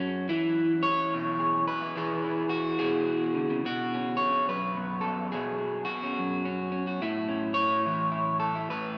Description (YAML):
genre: folk, solo fingerstyle acoustic guitar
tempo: 71 BPM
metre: 4/4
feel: swing 63% on 8ths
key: unclear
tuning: A4 = 440 Hz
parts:
  - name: electric guitar through a small old amp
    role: solo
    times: 0.0-9.0 s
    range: F#2 to C#5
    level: -29 LUFS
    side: equal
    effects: phaser
room: wet cathedral reverb, RT60 5.0 s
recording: recorded in a church or concert hall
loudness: -29 LUFS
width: mono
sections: 0.0-9.0 A section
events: none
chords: 0.3 E; 3.7 Bsus2; 7.0 Aadd9